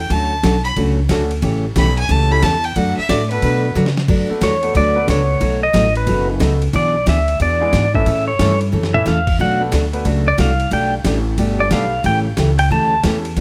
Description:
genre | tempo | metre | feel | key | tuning
country, western swing | 181 BPM | 4/4 | swing 65% on 8ths | D major | A4 = 440 Hz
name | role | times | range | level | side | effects
clear fiddle | second line | 0.0-3.7 s | B4 to B5 | -22 LUFS | equal | none
upright bass | bass | 0.0-13.4 s | F#1 to C#3 | -21 LUFS | equal | none
picked steel-string acoustic guitar | accompaniment | 0.1-13.4 s | B2 to B4 | -22 LUFS | equal | none
boom bap sampler-style drum kit | drums | 0.1-13.4 s | crash cymbal, hi-hat, kick drum, ride cymbal, snare drum, toms | -26 LUFS | equal | none
bright upright piano | accompaniment | 1.1-13.2 s | E3 to B4 | -27 LUFS | equal | none
pedal steel guitar | melody | 4.4-13.0 s | B4 to A5 | -20 LUFS | equal | none
room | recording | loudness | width
light reverb | none | -16 LUFS | mono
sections
0.0-4.1 A section; 4.1-13.4 A section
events
fiddle solo 0.0-4.1; drum fill 3.8-4.1, 8.7-9.1; pedal steel guitar solo 4.1-13.4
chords
0.1 Dmaj7; 1.4 A7; 2.8 D6; 5.4 B7; 6.7 E7/B; 8.1 A; 9.4 Bm7; 10.7 Gadd9; 12.0 A7

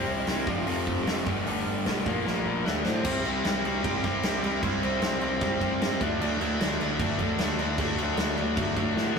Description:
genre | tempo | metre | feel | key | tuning
punk rock | 152 BPM | 4/4 | straight | unclear | A4 = 444 Hz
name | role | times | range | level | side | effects
overdriven electric guitar | melody | 0.0-9.0 s | A3 to G5 | -36 LUFS | right 2 dB | none
cranked stack guitar | riff | 0.0-9.2 s | F2 to D4 | -29 LUFS | left 6 dB | overdrive
raw garage guitar | riff | 0.0-9.2 s | F2 to E4 | -33 LUFS | right 6 dB | overdrive
growling picked electric bass | bass | 0.0-9.2 s | F1 to A2 | -33 LUFS | right 1 dB | overdrive
big rock drum kit | drums | 0.3-9.2 s | crash cymbal, hi-hat, kick drum, snare drum | -30 LUFS | right 1 dB | none
room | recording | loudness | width
moderate stone room reverb, RT60 1.0 s | rough rehearsal-room recording | -25 LUFS | side -5 dB against mid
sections
0.0-3.1 A section; 3.1-9.2 B section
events
drum fill 2.3-3.1, 9.0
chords
0.5 F; 1.3 G; 2.1 Bb; 2.7 D; 3.1 C; 6.0 D

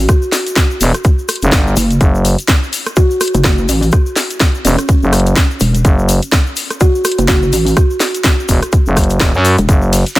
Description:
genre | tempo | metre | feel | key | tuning
bass house | 125 BPM | 4/4 | swing 57% on 16ths | F# phrygian | A4 = 440 Hz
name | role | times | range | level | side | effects
buzzing kalimba | melody | 0.0-8.0 s | C#4 to F#4 | -20 LUFS | right 1 dB | vintage 12-bit sampler grit, digital delay
pulsing pluck wobble bass | bass | 0.0-9.7 s | E1 to A1 | -12 LUFS | equal | chorus, sidechain pumping
electronic kick drum | drums | 0.1-10.2 s | none | -11 LUFS | equal | none
garage drum kit | drums | 0.1-10.2 s | hi-hat, ride cymbal, rim click, snare drum | -17 LUFS | equal | none
tube shaker | percussion | 0.1-10.2 s | none | -25 LUFS | left 3 dB | none
growling FM bass | bass | 0.8-10.0 s | E1 to F#2 | -12 LUFS | equal | tube saturation, sidechain pumping
room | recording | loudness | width
little or no reverb | none | -10 LUFS | side -17 dB against mid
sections
0.0-10.2 A section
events
none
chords
0.0 F#5

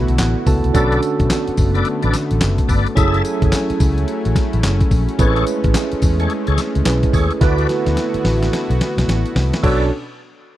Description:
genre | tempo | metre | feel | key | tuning
R&B, new jack swing | 108 BPM | 4/4 | swing 62% on 16ths | B dorian | A4 = 440 Hz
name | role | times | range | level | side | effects
tine electric piano | accompaniment | 0.0-9.9 s | B3 to A5 | -21 LUFS | right 4 dB | medium stereo tremolo
brassy analog pad | sustained chords | 0.0-9.9 s | B2 to G#5 | -25 LUFS | left 3 dB | chorus
vintage muted fingered electric bass | bass | 0.0-9.9 s | F#1 to E2 | -18 LUFS | equal | none
dusty soul sampler-style drum kit | drums | 0.1-9.8 s | crash cymbal, handclaps, hi-hat, kick drum, snare drum, tambourine | -18 LUFS | equal | none
tonewheel organ | stabs | 0.7-9.9 s | F#4 to E5 | -25 LUFS | left 3 dB | chorus vibrato, slow rotary speaker, tape echo
room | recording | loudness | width
little or no reverb | dry, close 1970s-style studio recording | -14 LUFS | side -14 dB against mid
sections
0.7-9.6 A section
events
tine electric piano fill 0.0-0.7; drum fill 7.4-9.6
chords
0.0 D6; 0.7 Bm7; 3.0 F#m9; 5.2 Amaj7; 7.4 D6; 9.6 Bm7

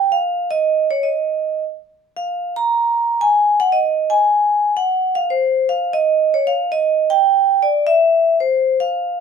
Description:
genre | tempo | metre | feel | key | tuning
jazz | 154 BPM | 4/4 | swing 66% on 8ths | unclear | A4 = 441 Hz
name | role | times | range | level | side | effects
vibraphone with medium hard mallets | solo | 0.0-9.2 s | C5 to Bb5 | -14 LUFS | right 1 dB | none
room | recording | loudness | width
moderate studio reverb, RT60 0.7 s | minimal, uncompressed stereo recording | -14 LUFS | side -6 dB against mid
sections
0.0-9.2 A section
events
none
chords
none

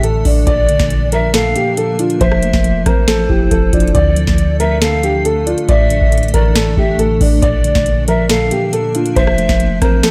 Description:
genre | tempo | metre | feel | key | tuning
hip hop, trap | 138 BPM | 4/4 | half-time | unclear | A4 = 441 Hz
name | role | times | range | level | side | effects
dark grand piano | melody | 0.0-10.1 s | D4 to D5 | -20 LUFS | equal | digital delay
breathy large pan pipes | second line | 0.0-10.1 s | C5 to F5 | -24 LUFS | equal | digital delay
muted felt-like synth keys | accompaniment | 0.0-10.1 s | A2 to D5 | -21 LUFS | equal | chorus
granular cloud pad | sustained chords | 0.0-10.1 s | E3 to Bb4 | -28 LUFS | equal | built-in reverb
clean 808-style bass | bass | 0.0-10.0 s | F1 to D2 | -20 LUFS | equal | none
booming analog drum machine | drums | 0.0-10.1 s | hi-hat, kick drum, rim click, snare drum | -18 LUFS | equal | none
room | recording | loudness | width
digital ambience | none | -13 LUFS | mono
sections
0.0-10.1 A section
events
none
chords
0.5 Bb; 2.2 Fmaj7; 3.9 Dm; 5.7 Asus4; 7.4 Bb; 9.2 Fmaj7

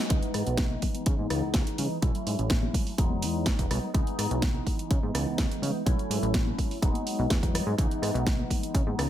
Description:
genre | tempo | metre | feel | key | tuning
filtered disco house | 125 BPM | 4/4 | straight | C# minor | A4 = 444 Hz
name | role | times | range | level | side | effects
funky polysynth comp | accompaniment | 0.0-9.1 s | E3 to E4 | -32 LUFS | equal | chorus, phaser, sidechain pumping, low-pass filter
plucky analog bass | bass | 0.1-9.1 s | E1 to C#3 | -30 LUFS | equal | sidechain pumping, low-pass filter
electronic kick drum | drums | 0.1-8.8 s | none | -27 LUFS | equal | none
house drum kit | drums | 0.1-9.1 s | hi-hat, rim click, snare drum | -33 LUFS | right 1 dB | sidechain pumping on hats
tube shaker and congas | percussion | 0.1-9.1 s | none | -38 LUFS | left 3 dB | sidechain pumping on perc, low-pass filter on perc
room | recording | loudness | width
digital ambience | none | -25 LUFS | side -11 dB against mid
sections
0.1-9.1 A section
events
band accent 0.0; filter sweep 0.1-9.1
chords
0.1 C#m7; 2.0 B9sus4; 3.0 Emaj9; 3.9 C#m7; 5.9 B9sus4; 6.8 Emaj9; 7.8 C#m7

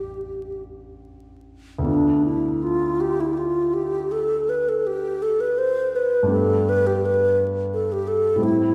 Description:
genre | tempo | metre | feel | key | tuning
classical, impressionist duo for alto flute and grand piano | 49-58 BPM (dotted quarters) | 12/8 | rubato | D dorian | A4 = 437 Hz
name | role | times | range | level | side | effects
hollow alto flute | melody | 0.0-8.7 s | D4 to C5 | -23 LUFS | equal | none
warm grand piano | accompaniment | 0.0-8.7 s | A1 to G4 | -30 LUFS | equal | none
room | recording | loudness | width
wet concert hall reverb, RT60 2.0 s | heard from further back in the room, vinyl crackle | -22 LUFS | mono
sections
0.0-1.9 A section; 1.9-8.7 A section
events
none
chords
0.0 A7sus4; 1.9 Dm6; 6.3 Gadd9

